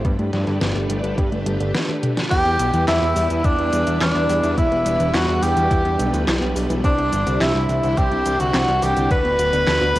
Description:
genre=synthwave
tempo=106 BPM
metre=4/4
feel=straight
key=E minor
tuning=A4 = 440 Hz
part: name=string machine, full ensemble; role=sustained chords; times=0.0-10.0 s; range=G3 to D5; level=-26 LUFS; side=equal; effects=ensemble chorus, sidechain pumping, cassette tape, shimmer reverb
part: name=wide unison pluck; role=arpeggios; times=0.0-10.0 s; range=D3 to E4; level=-29 LUFS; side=left 1 dB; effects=none
part: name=fat analog bass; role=bass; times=0.0-10.0 s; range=D1 to G2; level=-23 LUFS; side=equal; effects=none
part: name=electronic kick drum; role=drums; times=0.0-9.2 s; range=none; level=-20 LUFS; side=equal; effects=overdrive, cassette tape
part: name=pop drum kit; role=drums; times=0.0-10.0 s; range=cabasa, crash cymbal, handclaps, hi-hat, snare drum, toms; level=-26 LUFS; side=equal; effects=overdrive, cassette tape
part: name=breathy tenor saxophone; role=melody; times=2.3-10.0 s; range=D4 to B4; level=-21 LUFS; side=equal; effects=tape echo, shimmer reverb
part: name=airy dreamy lead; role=second line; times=2.3-10.0 s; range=D5 to B5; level=-25 LUFS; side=equal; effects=chorus, cassette tape, shimmer reverb
room=moderate spring reverb, RT60 2.5 s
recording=home recording on cassette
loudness=-17 LUFS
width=side -16 dB against mid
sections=0.0-2.3 A section; 2.3-10.0 B section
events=filter sweep on synth arpeggio sound 0.0-2.3; drum fill 1.7-2.3; band accent 2.2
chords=0.0 Gadd9; 2.3 Em; 6.8 Cadd9; 9.1 Bm/D

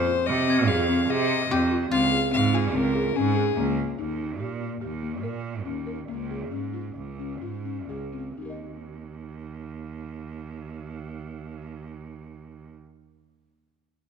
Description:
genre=contemporary instrumental, chamber music in an uneven meter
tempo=122-146 BPM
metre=5/4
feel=straight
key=Eb mixolydian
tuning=A4 = 439 Hz
part: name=warm violin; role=melody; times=0.0-3.8 s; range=Ab4 to F5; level=-27 LUFS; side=left 6 dB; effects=none
part: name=koto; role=second line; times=0.0-4.1 s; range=F4 to Ab4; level=-33 LUFS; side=left 2 dB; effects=none
part: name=buzzing marimba with soft mallets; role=arpeggios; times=0.0-12.8 s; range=Bb3 to Eb5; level=-27 LUFS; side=left 2 dB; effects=none
part: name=bright cello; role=bass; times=0.0-12.7 s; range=Db2 to C3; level=-29 LUFS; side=right 6 dB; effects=none
part: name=glockenspiel with soft plastic mallets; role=texture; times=0.5-1.8 s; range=Ab6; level=-37 LUFS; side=left 3 dB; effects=none
room=moderate concert hall reverb, RT60 2.2 s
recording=minimal, uncompressed stereo recording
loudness=-23 LUFS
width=side -6 dB against mid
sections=0.0-4.0 A section; 4.0-8.4 B section; 8.4-13.3 C section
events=slowing down 4.8-8.4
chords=0.0 Fm7; 1.9 Dbmaj7; 4.0 Eb; 6.1 Db; 8.4 Eb

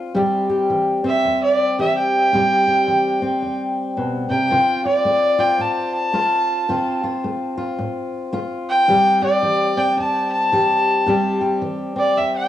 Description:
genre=acoustic country blues, solo or duo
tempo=110 BPM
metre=4/4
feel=swing 62% on 8ths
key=A minor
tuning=A4 = 441 Hz
part: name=fingerpicked steel-string acoustic guitar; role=accompaniment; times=0.0-12.5 s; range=E2 to G4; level=-20 LUFS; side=left 1 dB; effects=cassette tape
part: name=dark fiddle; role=melody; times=1.1-12.5 s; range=D5 to A5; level=-18 LUFS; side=equal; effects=cassette tape, analog delay
room=light reverb, studio reverb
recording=home recording on cassette, small room ambience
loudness=-16 LUFS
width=side -12 dB against mid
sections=0.0-12.5 A section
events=fiddle solo 0.0-12.5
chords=0.1 Am7; 4.5 Dm7; 8.9 Am7

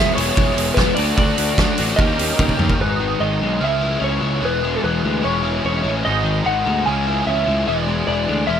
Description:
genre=indie rock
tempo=148 BPM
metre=4/4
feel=straight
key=unclear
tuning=A4 = 440 Hz
part: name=electric guitar through a small old amp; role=melody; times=0.0-8.6 s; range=A4 to G#5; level=-22 LUFS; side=equal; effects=analog chorus, digital delay
part: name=string machine, violas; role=sustained chords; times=0.0-2.8 s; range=A4 to E6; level=-35 LUFS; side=equal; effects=none
part: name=biting overdriven guitar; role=riff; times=0.0-8.6 s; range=G#2 to G4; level=-25 LUFS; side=right 6 dB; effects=ensemble chorus, digital delay
part: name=overdriven electric guitar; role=riff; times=0.0-8.6 s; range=G#2 to G4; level=-23 LUFS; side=left 7 dB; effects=none
part: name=fuzz picked electric bass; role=bass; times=0.0-8.6 s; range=E1 to Eb2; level=-23 LUFS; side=equal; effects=overdrive
part: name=loose indie drum kit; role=drums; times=0.2-2.8 s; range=hi-hat, kick drum, snare drum, toms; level=-19 LUFS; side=right 1 dB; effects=none
room=light reverb, studio reverb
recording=none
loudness=-16 LUFS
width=side -8 dB against mid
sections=0.0-2.8 A section; 2.8-8.6 B section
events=drum fill 2.4-2.8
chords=0.0 E; 1.0 D; 2.0 Eb7; 2.8 G#m; 3.6 C#m; 4.4 E; 5.2 C#m/E; 6.0 G#m; 6.8 C#m; 7.7 E

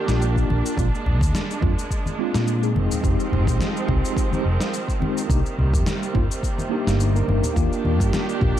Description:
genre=sunset chillout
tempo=106 BPM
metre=4/4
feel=swing 55% on 16ths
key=C minor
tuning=A4 = 440 Hz
part: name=rich symphonic string section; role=sustained chords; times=0.0-8.6 s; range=C3 to G4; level=-28 LUFS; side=right 3 dB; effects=none
part: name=mellow tine electric piano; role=accompaniment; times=0.1-8.6 s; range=Ab3 to Bb4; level=-27 LUFS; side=moving between left 3 dB and right 5 dB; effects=medium stereo tremolo, auto-pan, low-pass filter, tape echo
part: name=mellow fretless electric bass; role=bass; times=0.1-8.5 s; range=F1 to Bb2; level=-21 LUFS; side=equal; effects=none
part: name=electronic snare drum and shaker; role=drums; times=0.1-8.6 s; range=none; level=-30 LUFS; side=equal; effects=none
part: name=electronic kick drum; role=drums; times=0.4-8.5 s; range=none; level=-24 LUFS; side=equal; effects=none
part: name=congas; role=percussion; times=0.5-8.5 s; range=none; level=-28 LUFS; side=left 1 dB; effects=none
room=light reverb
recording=dark, warm production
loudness=-19 LUFS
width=side -11 dB against mid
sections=0.0-8.6 A section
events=none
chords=0.0 Ebmaj7; 0.8 Bb7; 2.8 Fm7; 5.3 Cm7; 7.6 Ebmaj7

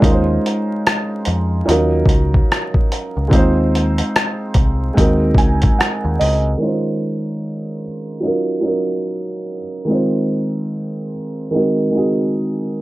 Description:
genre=lo-fi hip hop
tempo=73 BPM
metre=4/4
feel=swing 61% on 16ths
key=unclear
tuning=A4 = 441 Hz
part: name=felt-muted upright piano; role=accompaniment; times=0.0-12.8 s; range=Eb3 to Ab5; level=-18 LUFS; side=right 1 dB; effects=low-pass filter
part: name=deep dub picked electric bass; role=bass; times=0.0-6.5 s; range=C2 to F2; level=-18 LUFS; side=equal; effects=none
part: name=lo-fi sampler-style drum kit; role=drums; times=0.0-6.4 s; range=hi-hat, kick drum, rim click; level=-15 LUFS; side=equal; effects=none
room=light reverb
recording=vinyl crackle, low-pass filter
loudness=-15 LUFS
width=side -17 dB against mid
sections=0.0-6.6 A section; 6.6-12.8 B section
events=filter sweep 6.6-12.8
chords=0.0 Dbmaj9/Eb; 1.7 Ebm9; 3.3 Fm7/Eb; 5.0 Ab9; 6.6 Dbmaj9/Eb; 8.2 Ebm9; 9.9 Fm7/Eb; 11.5 Ab9/Eb

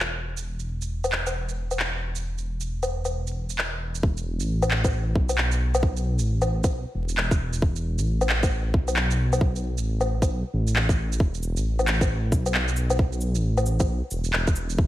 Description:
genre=future garage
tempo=134 BPM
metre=4/4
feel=swing 62% on 16ths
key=unclear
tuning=A4 = 440 Hz
part: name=dark detuned saw bass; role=bass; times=0.0-14.9 s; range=E1 to B1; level=-25 LUFS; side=equal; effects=sidechain pumping
part: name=electronic handclaps, shaker, woodblock and cabasa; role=drums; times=0.0-14.8 s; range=none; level=-27 LUFS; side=left 1 dB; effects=none
part: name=electronic kick drum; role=drums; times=4.0-14.9 s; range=none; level=-22 LUFS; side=equal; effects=none
room=light reverb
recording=vinyl crackle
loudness=-22 LUFS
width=side -14 dB against mid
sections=0.0-4.0 A section; 4.0-14.9 B section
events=none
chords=none

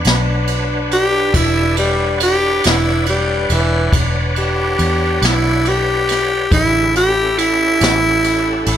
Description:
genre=slow blues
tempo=46 BPM (dotted quarters)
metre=12/8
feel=straight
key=unclear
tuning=A4 = 439 Hz
part: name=tonewheel organ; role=sustained chords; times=0.0-8.8 s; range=D3 to F#5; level=-24 LUFS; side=equal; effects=slow rotary speaker, overdrive, chorus vibrato
part: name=warm saxophone section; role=sustained chords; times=0.0-8.8 s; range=D4 to B4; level=-25 LUFS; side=left 2 dB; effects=none
part: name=jazz brush drum kit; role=drums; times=0.0-8.8 s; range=kick drum, ride cymbal, snare drum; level=-20 LUFS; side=right 1 dB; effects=none
part: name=vintage muted fingered electric bass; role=bass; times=0.1-8.8 s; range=E1 to E2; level=-20 LUFS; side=equal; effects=none
part: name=growling tenor saxophone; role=melody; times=0.9-8.8 s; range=E3 to G4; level=-15 LUFS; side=equal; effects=plate reverb
room=light reverb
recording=none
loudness=-13 LUFS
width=side -10 dB against mid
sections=0.0-8.8 A section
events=tenor saxophone solo 0.0-8.8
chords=0.0 Esus2; 6.5 A13

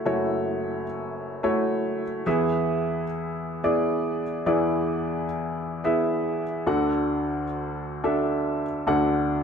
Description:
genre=pop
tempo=109 BPM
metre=4/4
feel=straight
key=unclear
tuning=A4 = 440 Hz
part: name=warm upright piano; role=solo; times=0.0-9.4 s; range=F#1 to F#5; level=-23 LUFS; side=equal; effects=none
room=moderate large studio reverb, RT60 1.1 s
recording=faint mains hum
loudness=-23 LUFS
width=side -6 dB against mid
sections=0.0-9.4 A section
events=none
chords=0.0 F#m7; 2.3 E; 6.7 D

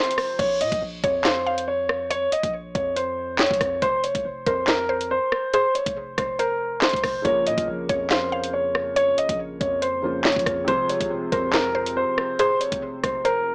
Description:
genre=hip hop, drill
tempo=140 BPM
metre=4/4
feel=half-time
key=Bb minor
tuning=A4 = 440 Hz
part: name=dark grand piano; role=melody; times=0.0-13.5 s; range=Bb4 to Eb5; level=-25 LUFS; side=equal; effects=low-pass filter
part: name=felt-muted upright piano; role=accompaniment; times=0.0-0.4, 7.2-13.5 s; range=C3 to Bb4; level=-33 LUFS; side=equal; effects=low-pass filter
part: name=drill drum kit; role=drums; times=0.0-13.4 s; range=crash cymbal, handclaps, hi-hat, kick drum, rim click, snare drum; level=-27 LUFS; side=equal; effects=none
part: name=long sustained 808-style bass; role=bass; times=0.4-13.5 s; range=F1 to Bb2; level=-40 LUFS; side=equal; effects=none
part: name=mallet-like synth pluck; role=second line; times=1.0-13.5 s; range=Ab4 to F5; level=-30 LUFS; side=equal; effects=chorus, tape echo
room=light reverb, digital ambience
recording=dry, gritty hardware recording, small speaker sound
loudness=-23 LUFS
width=mono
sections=0.4-13.5 A section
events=break 0.0-0.4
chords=0.4 Bbmadd9; 3.8 F5; 7.2 Bbmadd9; 10.7 Fm

